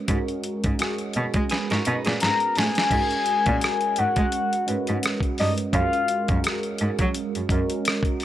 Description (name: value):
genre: R&B, neo-soul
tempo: 85 BPM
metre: 4/4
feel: swing 55% on 16ths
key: G# dorian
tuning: A4 = 439 Hz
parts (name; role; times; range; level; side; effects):
- mellow tine electric piano; accompaniment; 0.0-8.2 s; G#3 to B4; -28 LUFS; right 3 dB; phaser
- rich cello; bass; 0.1-7.6 s; F#2 to G#3; -26 LUFS; equal; none
- dusty soul sampler-style drum kit; drums; 0.1-8.2 s; crash cymbal, hi-hat, kick drum, rim click, snare drum; -25 LUFS; equal; none
- archtop guitar, miked and amplified; second line; 1.5-2.9 s; B3 to B4; -30 LUFS; right 3 dB; none
- soft octave-layered synth lead; melody; 2.2-6.4 s; D#5 to A#5; -24 LUFS; left 3 dB; chorus
room: little or no reverb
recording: none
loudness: -21 LUFS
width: side -12 dB against mid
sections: 0.0-2.9 A section; 2.9-8.2 B section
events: drum fill 1.5-2.9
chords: 0.0 G#m7; 5.7 F#maj9